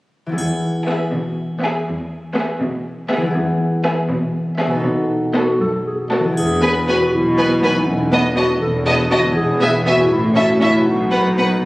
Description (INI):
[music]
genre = cinematic, playful, whimsical film cue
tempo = 80 BPM (dotted quarters)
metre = 6/8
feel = straight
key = E major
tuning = A4 = 441 Hz
[part]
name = concert harp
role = arpeggios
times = 0.3-11.7 s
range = A2 to A4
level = -22 LUFS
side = left 1 dB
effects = none
[part]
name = rich studio cello section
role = bass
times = 0.4-11.7 s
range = E2 to B2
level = -24 LUFS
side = equal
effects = none
[part]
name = triangle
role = percussion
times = 0.4-1.3, 6.4-7.3 s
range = none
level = -34 LUFS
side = equal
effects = none
[part]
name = rich symphonic violin section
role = melody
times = 0.9-11.5 s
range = D#5 to A5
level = -29 LUFS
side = equal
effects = none
[part]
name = rich studio violin section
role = second line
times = 0.9-11.5 s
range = G#4 to E5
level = -22 LUFS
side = equal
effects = none
[part]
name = rich studio viola section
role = accompaniment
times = 0.9-11.5 s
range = B3 to C#4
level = -24 LUFS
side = right 1 dB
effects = none
[part]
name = dark clarinet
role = second line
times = 5.4-11.7 s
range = B3 to A4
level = -19 LUFS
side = equal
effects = none
[part]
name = warm studio double bass section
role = bass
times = 6.4-11.7 s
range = E1 to B1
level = -21 LUFS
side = equal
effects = none
[sound]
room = wet scoring stage reverb, RT60 2.1 s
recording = recorded on a phone in the room, studio reverb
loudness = -15 LUFS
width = side -20 dB against mid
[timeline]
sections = 0.4-6.4 A section; 6.4-11.7 B section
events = none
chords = 0.4 E; 4.8 B7; 6.4 E; 7.9 B7/E; 9.4 E; 10.1 A; 10.9 B